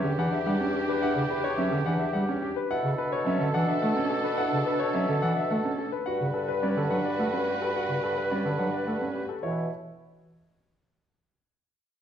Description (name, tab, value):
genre	classical, minimalist pattern music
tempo	107 BPM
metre	3/4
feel	straight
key	B minor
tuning	A4 = 439 Hz
part	warm concert grand piano	melody	0.0-9.7 s	G4 to F#5	-32 LUFS	left 6 dB	none
part	warm oboe	second line	0.0-9.3 s	G4 to B4	-34 LUFS	right 3 dB	none
part	warm bass clarinet	accompaniment	0.0-9.7 s	C#3 to A3	-31 LUFS	right 1 dB	none
part	warm studio string section	sustained chords	0.0-9.3 s	D4 to B4	-34 LUFS	equal	none
part	warm concert grand piano	arpeggios	0.0-9.7 s	C#4 to B4	-33 LUFS	right 4 dB	none
part	warm bassoon	bass	0.0-9.7 s	E2 to B2	-32 LUFS	equal	none
room	wet recital hall reverb, RT60 1.3 s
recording	dark, warm production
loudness	-25 LUFS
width	side -9 dB against mid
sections	0.0-9.4 A section; 9.4-11.1 B section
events	none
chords	0.0 Em9; 2.7 Bm11; 6.1 Gmaj9; 9.4 Bsus4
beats	0.46 | 1.02 1.58 2.15 | 2.71 3.27 3.83 | 4.39 4.95 5.51 | 6.07 6.63 7.19 | 7.75 8.31 8.87 | 9.44